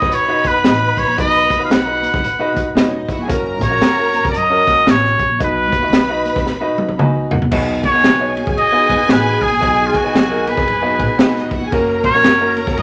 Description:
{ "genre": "uptempo 1960s-style soul", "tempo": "114 BPM", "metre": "4/4", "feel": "swing 61% on 8ths", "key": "B major", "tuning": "A4 = 439 Hz", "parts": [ { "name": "clear trumpet", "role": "melody", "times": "0.0-12.8 s", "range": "E#4 to F#5", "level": "-18 LUFS", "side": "equal", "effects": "none" }, { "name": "dark horn section", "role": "second line", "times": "0.0-12.8 s", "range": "A#3 to C#5", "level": "-31 LUFS", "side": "equal", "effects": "none" }, { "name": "warm studio string section", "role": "second line", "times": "0.0-12.8 s", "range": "B3 to B5", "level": "-25 LUFS", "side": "equal", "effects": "none" }, { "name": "warm grand piano", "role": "accompaniment", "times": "0.0-12.7 s", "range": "B2 to G#5", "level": "-23 LUFS", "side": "equal", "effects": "none" }, { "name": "upright bass", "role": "bass", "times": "0.0-12.8 s", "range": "E1 to B2", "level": "-29 LUFS", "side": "equal", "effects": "none" }, { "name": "crunchy breakbeat drum kit", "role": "drums", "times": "0.0-12.8 s", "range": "crash cymbal, hi-hat, kick drum, ride cymbal, snare drum, toms", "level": "-20 LUFS", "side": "equal", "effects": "none" }, { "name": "congas", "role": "percussion", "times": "0.4-12.7 s", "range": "none", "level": "-30 LUFS", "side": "equal", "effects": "none" } ], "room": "wet club reverb, RT60 0.6 s", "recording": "none", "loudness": "-15 LUFS", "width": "mono", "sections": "0.0-7.5 A section; 7.5-12.8 A section", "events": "drum fill 6.5-7.5; grand piano fill 6.7-7.5", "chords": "0.0 B; 3.3 F#; 5.4 B; 11.7 F#" }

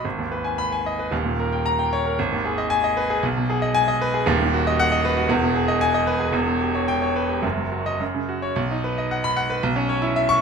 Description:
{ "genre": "classical, virtuoso piano study", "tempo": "114 BPM", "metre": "2/4", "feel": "rubato", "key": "G# minor, B major from 4.3 s", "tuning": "A4 = 441 Hz", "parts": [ { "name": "clear grand piano", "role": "solo", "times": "0.0-10.4 s", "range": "D#1 to C#6", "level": "-20 LUFS", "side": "equal", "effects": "none" } ], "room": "moderate recital hall reverb, RT60 1.4 s", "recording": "minimal, uncompressed stereo recording", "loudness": "-20 LUFS", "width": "side -6 dB against mid", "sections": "0.0-8.6 A section; 8.6-10.4 B section", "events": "none", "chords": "0.0 G#m; 1.1 D#7; 2.2 G#m; 3.2 G#m/B; 4.3 B/D#; 5.3 Emaj7; 6.3 C#m7b5/E; 7.4 D#m/F#; 8.0 F#5; 8.6 B; 9.6 C#m7/B" }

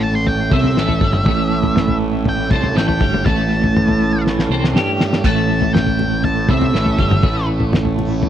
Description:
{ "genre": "psychedelic rock", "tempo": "121 BPM", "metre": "4/4", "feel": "straight", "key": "unclear", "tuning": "A4 = 439 Hz", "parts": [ { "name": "octave-fuzz lead guitar", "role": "melody", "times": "0.0-7.5 s", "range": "E5 to C6", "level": "-23 LUFS", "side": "equal", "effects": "distortion, tape echo" }, { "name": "tonewheel organ", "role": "sustained chords", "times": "0.0-8.3 s", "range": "A3 to C#5", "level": "-26 LUFS", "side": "right 5 dB", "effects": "slow rotary speaker" }, { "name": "twelve-string electric guitar", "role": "riff", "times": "0.0-8.3 s", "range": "G2 to G4", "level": "-20 LUFS", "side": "right 1 dB", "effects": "tremolo, double-tracked left and right" }, { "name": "fuzz picked electric bass", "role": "bass", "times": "0.0-8.3 s", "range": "G1 to G2", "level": "-20 LUFS", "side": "equal", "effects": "overdrive" }, { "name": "tanpura", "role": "drone", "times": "0.0-8.3 s", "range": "A2 to A3", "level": "-29 LUFS", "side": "right 1 dB", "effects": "none" }, { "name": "cloth-damped thuddy drum kit", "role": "drums", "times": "0.3-8.3 s", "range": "kick drum, snare drum, splash cymbal, toms", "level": "-18 LUFS", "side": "left 1 dB", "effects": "none" }, { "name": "congas", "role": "percussion", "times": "6.0-8.1 s", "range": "none", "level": "-30 LUFS", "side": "left 1 dB", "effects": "none" } ], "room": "little or no reverb", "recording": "dry, close 1970s-style studio recording", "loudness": "-14 LUFS", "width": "side -10 dB against mid", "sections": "0.0-8.3 A section", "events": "lead electric guitar solo 0.0-8.3; drum fill 4.3-5.2", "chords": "0.0 A" }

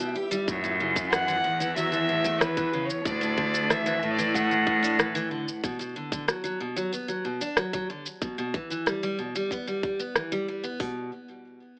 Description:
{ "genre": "folktronica", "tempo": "93 BPM", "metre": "4/4", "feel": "straight", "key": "unclear", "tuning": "A4 = 441 Hz", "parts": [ { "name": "dark violin", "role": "melody", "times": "0.0-5.0 s", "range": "B4 to G5", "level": "-29 LUFS", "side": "equal", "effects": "digital delay" }, { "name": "picked steel-string acoustic guitar", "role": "arpeggios", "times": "0.0-11.1 s", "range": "A2 to G4", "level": "-30 LUFS", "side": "equal", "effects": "digital delay" }, { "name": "organic electronic drum kit", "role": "drums", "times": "0.0-10.8 s", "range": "hi-hat, rim click, shaker", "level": "-28 LUFS", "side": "equal", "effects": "low-pass filter on snare, low-pass filter on hats, low-pass filter on perc" }, { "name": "flickering grainy texture", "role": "texture", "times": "0.0-0.5 s", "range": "E4 to E5", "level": "-40 LUFS", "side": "equal", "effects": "built-in reverb" }, { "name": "clear cello", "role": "bass", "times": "0.5-5.5 s", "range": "D2 to A2", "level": "-27 LUFS", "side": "equal", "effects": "none" }, { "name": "organic electronic drum kit", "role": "drums", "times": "0.5-10.9 s", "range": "hi-hat, kick drum", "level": "-32 LUFS", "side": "equal", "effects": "none" } ], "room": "light reverb", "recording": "AM radio sound", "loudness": "-25 LUFS", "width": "side -35 dB against mid", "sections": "0.5-10.8 A section", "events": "break 0.0-0.5", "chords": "0.5 F#m7; 3.1 Dsus2; 5.6 Bm; 8.2 Em; 10.8 N.C." }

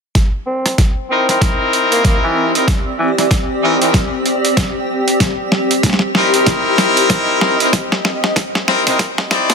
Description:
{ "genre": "glitch hop", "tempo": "95 BPM", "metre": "4/4", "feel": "swing 60% on 16ths", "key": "unclear", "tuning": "A4 = 440 Hz", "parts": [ { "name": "granular cloud pad", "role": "texture", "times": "1.7-9.5 s", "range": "C4 to D#5", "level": "-18 LUFS", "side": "equal", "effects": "built-in reverb, sidechain pumping" }, { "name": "boom bap sampler-style drum kit", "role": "drums", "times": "0.2-9.5 s", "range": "hi-hat, rim click, snare drum", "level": "-17 LUFS", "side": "right 1 dB", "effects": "overdrive" }, { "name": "electronic kick drum", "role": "drums", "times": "0.2-9.1 s", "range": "none", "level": "-16 LUFS", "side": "equal", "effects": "overdrive" }, { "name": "growling tenor saxophone", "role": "melody", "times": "0.5-3.9 s", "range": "E3 to C4", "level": "-21 LUFS", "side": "equal", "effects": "low-pass filter, ping-pong delay" }, { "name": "brilliant horn section", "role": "stabs", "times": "1.1-9.5 s", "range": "C4 to D5", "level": "-16 LUFS", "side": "left 2 dB", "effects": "sidechain pumping, low-pass filter, ping-pong delay" } ], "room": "moderate lush hall reverb, RT60 2.3 s", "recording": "dense, heavily limited modern master, high-pass filter", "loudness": "-12 LUFS", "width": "side -5 dB against mid", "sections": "0.2-9.5 A section", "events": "build-up 0.2-9.5; drum fill 0.2-9.5; filter sweep 0.2-9.5", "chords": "0.2 C7#9" }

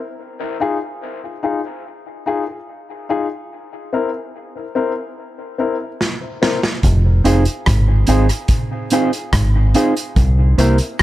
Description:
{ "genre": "dub reggae", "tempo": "72 BPM", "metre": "4/4", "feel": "straight", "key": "F minor", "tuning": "A4 = 436 Hz", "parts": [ { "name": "dark upright piano", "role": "stabs", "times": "0.6-10.7 s", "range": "C4 to Bb4", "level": "-22 LUFS", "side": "left 4 dB", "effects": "dub echo" }, { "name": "vintage drum kit", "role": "drums", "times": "6.0-11.0 s", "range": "hi-hat, kick drum, rim click, snare drum", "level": "-19 LUFS", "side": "equal", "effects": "none" }, { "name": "deep dub fingered electric bass", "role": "bass", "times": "6.8-10.8 s", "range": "F1 to C2", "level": "-13 LUFS", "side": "equal", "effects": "none" }, { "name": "mellow electric guitar", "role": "accompaniment", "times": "7.2-10.8 s", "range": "Bb3 to C5", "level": "-20 LUFS", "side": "right 5 dB", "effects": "dub echo" } ], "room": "small room ambience", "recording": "none", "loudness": "-15 LUFS", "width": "side -15 dB against mid", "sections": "0.0-6.8 A section; 6.8-11.0 B section", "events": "break 0.0-6.8; drum fill 6.0-6.8", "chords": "0.2 Fm7; 3.5 C7; 6.8 Fm7; 10.2 C7" }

